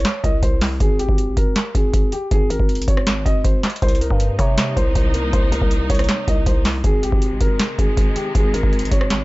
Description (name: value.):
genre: hip hop, trap.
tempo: 159 BPM.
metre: 4/4.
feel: half-time.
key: unclear.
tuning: A4 = 441 Hz.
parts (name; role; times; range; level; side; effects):
dark concert grand piano; melody; 0.0-9.2 s; G4 to Eb5; -25 LUFS; equal; tape echo.
growling 808-style bass; bass; 0.0-9.2 s; Ab1 to C3; -22 LUFS; equal; none.
booming analog drum machine; drums; 0.0-9.2 s; handclaps, hi-hat, kick drum, rim click, snare drum; -18 LUFS; equal; overdrive.
warm symphonic string section; sustained chords; 3.8-9.2 s; C3 to Eb4; -28 LUFS; equal; none.
room: small room ambience.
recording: dark, warm production, nothing above 7.8 kHz.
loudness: -16 LUFS.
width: side -20 dB against mid.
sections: 0.0-9.2 A section.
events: none.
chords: 0.0 C5; 0.8 Absus2; 3.8 Cm7; 6.8 Ab.